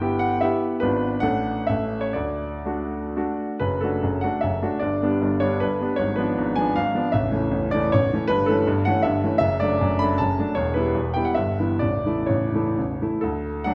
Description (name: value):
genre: classical, romantic triple-time dance for piano with dotted rhythms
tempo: 113-175 BPM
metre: 3/4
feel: rubato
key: D major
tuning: A4 = 440 Hz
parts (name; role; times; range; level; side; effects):
- clear grand piano; solo; 0.0-13.7 s; A0 to B5; -23 LUFS; equal; none
room: moderate scoring stage reverb, RT60 1.9 s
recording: none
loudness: -23 LUFS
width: mono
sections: 0.0-3.6 A section; 3.6-13.2 B section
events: none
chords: 0.0 Em/G; 0.8 G#dim7; 1.2 D/A; 1.7 A; 2.1 D; 3.6 D/F#; 4.8 G; 6.0 G#dim7; 7.1 A; 8.3 A7/G; 9.4 D/F#; 10.6 Em; 11.4 Em/G; 11.8 A; 13.2 D